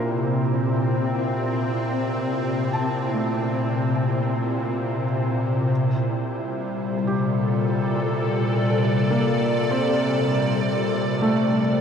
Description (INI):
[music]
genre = ambient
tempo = free time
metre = none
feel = none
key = C mixolydian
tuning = A4 = 441 Hz
[part]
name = evolving wavetable pad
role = sustained chords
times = 0.0-11.8 s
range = Bb2 to D5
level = -21 LUFS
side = left 1 dB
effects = ensemble chorus, built-in reverb
[part]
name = felt-muted upright piano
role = arpeggios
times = 0.0-11.8 s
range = A3 to A5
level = -28 LUFS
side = right 1 dB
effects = ping-pong delay
[sound]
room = wet lush hall reverb, RT60 2.4 s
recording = dark, warm production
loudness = -20 LUFS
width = side -7 dB against mid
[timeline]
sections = 0.0-11.8 A section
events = fade-in on felt piano 0.0-11.8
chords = 0.0 C7